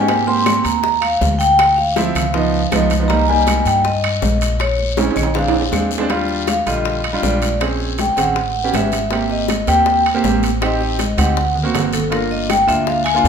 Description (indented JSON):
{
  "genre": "Afro-Cuban jazz",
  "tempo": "160 BPM",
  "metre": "4/4",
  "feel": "straight",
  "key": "Eb major from 6.1 s",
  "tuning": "A4 = 440 Hz",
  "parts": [
    { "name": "vibraphone with medium mallets", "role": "melody", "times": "0.0-13.3 s", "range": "A4 to C6", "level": "-18 LUFS", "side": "left 1 dB", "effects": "none" },
    { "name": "clear baby grand piano", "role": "accompaniment", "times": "0.0-13.3 s", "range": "D3 to Ab4", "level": "-20 LUFS", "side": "right 4 dB", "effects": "none" },
    { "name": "upright bass", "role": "bass", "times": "0.0-13.3 s", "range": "G1 to Ab2", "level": "-22 LUFS", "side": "left 1 dB", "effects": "none" },
    { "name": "bongos", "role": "percussion", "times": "0.1-13.3 s", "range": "none", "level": "-27 LUFS", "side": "left 7 dB", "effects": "none" },
    { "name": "congas", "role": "percussion", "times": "0.1-13.3 s", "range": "none", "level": "-26 LUFS", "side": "left 1 dB", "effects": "none" },
    { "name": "guiro", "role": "percussion", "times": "0.1-13.3 s", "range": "none", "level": "-29 LUFS", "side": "left 7 dB", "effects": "none" },
    { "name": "timbales", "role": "percussion", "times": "0.1-13.3 s", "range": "none", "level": "-25 LUFS", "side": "right 7 dB", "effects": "none" },
    { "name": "claves", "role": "percussion", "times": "0.5-5.9, 12.5-13.3 s", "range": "none", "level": "-32 LUFS", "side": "right 1 dB", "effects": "none" }
  ],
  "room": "moderate large studio reverb, RT60 1.2 s",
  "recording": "minimal, uncompressed stereo recording",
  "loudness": "-14 LUFS",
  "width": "side -7 dB against mid",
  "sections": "0.0-6.1 A section; 6.1-13.3 B section",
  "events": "drum fill 5.0-6.1, 11.0-12.1; vibraphone solo 6.1-13.3",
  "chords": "0.1 Abmaj7; 1.6 Dm7; 2.3 Db9; 3.1 Cm7; 4.6 Bbm7; 5.4 Bb7; 6.1 Ebmaj7; 7.6 Bbm7; 8.4 A13; 9.1 Abmaj9; 10.6 Am7b5; 11.4 D7b13; 12.1 Gm7"
}